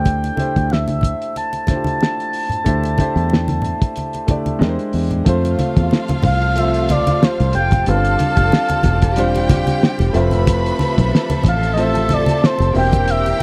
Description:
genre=lush 1970s-style soul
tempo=92 BPM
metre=4/4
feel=swing 54% on 16ths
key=unclear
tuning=A4 = 442 Hz
part: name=expressive synth lead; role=melody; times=0.0-13.4 s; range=C5 to A5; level=-23 LUFS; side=equal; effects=chorus
part: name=warm baby grand piano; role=accompaniment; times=0.0-13.4 s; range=G3 to D5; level=-25 LUFS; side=equal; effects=none
part: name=fingered electric bass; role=bass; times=0.0-13.3 s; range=E1 to F2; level=-21 LUFS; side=equal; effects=none
part: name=cloth-damped thuddy drum kit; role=drums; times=0.1-13.4 s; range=hi-hat, kick drum, snare drum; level=-19 LUFS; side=equal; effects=none
part: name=congas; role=percussion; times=0.1-13.4 s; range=none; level=-25 LUFS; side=equal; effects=none
part: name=warm studio violin section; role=second line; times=5.2-13.4 s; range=F4 to B5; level=-27 LUFS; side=equal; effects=none
part: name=rich studio string section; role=sustained chords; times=5.3-13.4 s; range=E3 to E5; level=-31 LUFS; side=equal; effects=none
room=small room ambience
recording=dry, close 1970s-style studio recording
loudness=-17 LUFS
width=mono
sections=0.0-5.3 A section; 5.3-13.4 B section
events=none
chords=0.0 D9sus4; 4.6 E7alt; 5.3 Fmaj7; 7.9 G7sus4; 10.1 Fmaj7; 12.8 C7/E

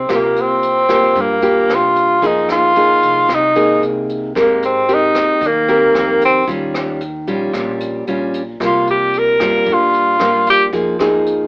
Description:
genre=bossa nova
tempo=113 BPM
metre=4/4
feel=straight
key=F minor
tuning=A4 = 440 Hz
part: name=breathy tenor saxophone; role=melody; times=0.0-10.7 s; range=Bb3 to Bb4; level=-15 LUFS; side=equal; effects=cassette tape
part: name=nylon-string guitar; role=accompaniment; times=0.0-11.5 s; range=G2 to Bb4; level=-20 LUFS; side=equal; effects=cassette tape
part: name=upright bass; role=bass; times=0.0-11.5 s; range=Bb1 to Ab2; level=-37 LUFS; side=equal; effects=none
part: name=jazz brush drum kit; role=drums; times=0.1-11.4 s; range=hi-hat, kick drum, rim click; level=-30 LUFS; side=equal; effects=cassette tape
room=moderate studio reverb, RT60 0.6 s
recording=home recording on cassette, AM radio sound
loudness=-15 LUFS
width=mono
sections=0.0-11.5 A section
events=tenor saxophone solo 0.0-11.5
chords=0.1 C7sus4; 2.2 Fm7; 4.3 Abmaj9; 6.5 Eb9; 8.6 C7sus4; 10.7 Fm7

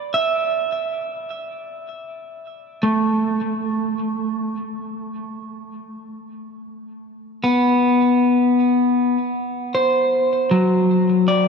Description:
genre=ambient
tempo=free time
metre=none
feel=none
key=unclear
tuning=A4 = 439 Hz
part: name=electric guitar at the edge of break-up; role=solo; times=0.0-11.5 s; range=F#3 to E5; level=-18 LUFS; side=equal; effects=ping-pong delay
room=wet cathedral reverb, RT60 6.4 s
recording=in a vast, echoing space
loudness=-17 LUFS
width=side -5 dB against mid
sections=0.0-2.1 A section; 2.1-11.5 B section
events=none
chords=0.0 N.C.; 2.1 D7/A (rootless)

